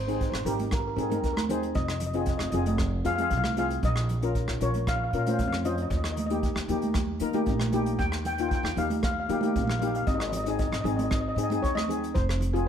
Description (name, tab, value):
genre	calypso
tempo	116 BPM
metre	4/4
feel	straight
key	Ab major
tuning	A4 = 441 Hz
part	steel pan	melody	0.0-12.7 s	Ab4 to G5	-32 LUFS	left 2 dB	none
part	upright bass	bass	0.0-12.7 s	F1 to Eb3	-30 LUFS	equal	none
part	steel pan	accompaniment	0.1-12.7 s	Bb3 to C5	-31 LUFS	left 3 dB	none
part	vintage brush drum kit	drums	0.1-12.7 s	hi-hat, kick drum, rim click	-32 LUFS	right 1 dB	none
part	congas	percussion	0.5-12.5 s	none	-34 LUFS	right 4 dB	none
room	light reverb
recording	none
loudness	-25 LUFS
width	side -8 dB against mid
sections	0.0-12.7 A section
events	none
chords	0.0 Abadd9; 1.8 Fm; 3.8 Bbm; 5.9 Eb; 10.1 Ab; 12.2 Fm